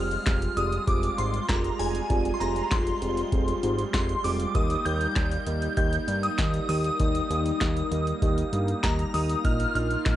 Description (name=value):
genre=synth-pop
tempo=98 BPM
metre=4/4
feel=straight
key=unclear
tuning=A4 = 442 Hz
part: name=shimmering bell with halo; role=melody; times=0.0-10.2 s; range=Ab5 to G6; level=-30 LUFS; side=equal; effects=ensemble chorus
part: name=muted felt-like synth keys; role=accompaniment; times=0.0-10.2 s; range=Bb3 to F5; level=-32 LUFS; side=right 4 dB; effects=chorus
part: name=phased analog pad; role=sustained chords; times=0.0-10.2 s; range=G3 to F4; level=-33 LUFS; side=left 1 dB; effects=phaser, chorus
part: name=fat analog bass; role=bass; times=0.0-10.2 s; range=F1 to G2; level=-29 LUFS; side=equal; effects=none
part: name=electro analog drum machine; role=drums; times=0.1-10.2 s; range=handclaps, hi-hat, kick drum, snare drum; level=-28 LUFS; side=equal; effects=none
room=little or no reverb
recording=dry, gritty hardware recording, nothing above 11.0 kHz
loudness=-23 LUFS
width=side -13 dB against mid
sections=0.0-10.2 A section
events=none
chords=0.0 Fmadd9; 4.5 Eb; 9.4 Bbsus4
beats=0.26 0.88 1.49 | 2.10 2.71 3.33 3.94 | 4.55 5.16 5.77 6.39 | 7.00 7.61 8.22 8.84 | 9.45 10.06